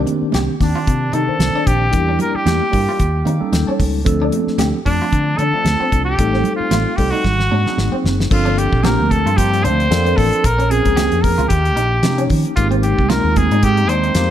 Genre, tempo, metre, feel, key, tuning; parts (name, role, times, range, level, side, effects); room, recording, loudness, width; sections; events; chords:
electric jazz fusion; 113 BPM; 4/4; swing 56% on 16ths; G minor; A4 = 439 Hz
bright tine electric piano; accompaniment; 0.0-14.3 s; Eb3 to A5; -20 LUFS; equal; medium stereo tremolo, phaser
clean electric guitar; stabs; 0.0-14.1 s; C4 to G4; -26 LUFS; left 1 dB; lush chorus
fingered electric bass; bass; 0.0-14.3 s; Gb1 to Eb3; -18 LUFS; equal
damped 70s drum kit; drums; 0.1-14.3 s; crash cymbal, hi-hat, kick drum, snare drum; -20 LUFS; equal
congas; percussion; 0.1-14.3 s; -26 LUFS; right 6 dB
clear trumpet; melody; 0.6-14.3 s; D4 to C5; -19 LUFS; equal
light reverb; -14 LUFS; side -10 dB against mid
0.0-8.3 A section; 8.3-14.3 B section
tine electric piano fill 3.0-4.1; drum fill 7.2-8.3
0.0 Cm9; 1.9 Em7b5; 3.0 Eb7#11; 4.1 Dm7; 6.2 Am7b5; 7.2 Ab9; 8.3 Gm11; 10.4 Bbm9; 11.5 Eb7; 12.6 Abmaj9